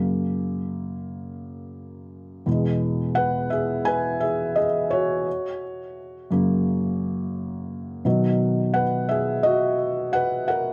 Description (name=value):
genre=pop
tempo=86 BPM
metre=4/4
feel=straight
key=unclear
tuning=A4 = 441 Hz
part: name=felt-muted upright piano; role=solo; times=0.0-10.7 s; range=E2 to G#5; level=-24 LUFS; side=equal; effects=delay
room=moderate studio reverb, RT60 0.5 s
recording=none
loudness=-24 LUFS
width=mono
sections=0.0-2.5 A section; 2.5-10.7 B section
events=felt piano solo 0.0-2.5, 2.5-10.7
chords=0.0 F#; 2.5 E; 5.3 F#; 8.1 B